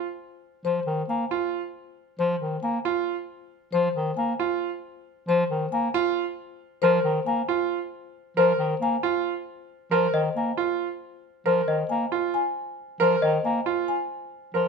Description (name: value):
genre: classical, minimalist pattern music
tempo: 272 BPM (eighths)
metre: 7/8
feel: straight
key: unclear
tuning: A4 = 439 Hz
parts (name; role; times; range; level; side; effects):
- bright concert grand piano; arpeggios; 0.0-14.7 s; F4 to Bb4; -25 LUFS; right 9 dB; none
- marimba with soft mallets; melody; 0.6-14.7 s; C5 to Ab5; -27 LUFS; left 8 dB; none
- warm bass clarinet; accompaniment; 0.6-14.7 s; Eb3 to Bb3; -27 LUFS; right 1 dB; none
- trough xylophone with soft rubber mallets; arpeggios; 10.1-13.5 s; Eb5; -29 LUFS; left 5 dB; none
room: light reverb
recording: none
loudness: -23 LUFS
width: side -5 dB against mid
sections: 0.0-14.7 A section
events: none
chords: 0.0 Bb7sus4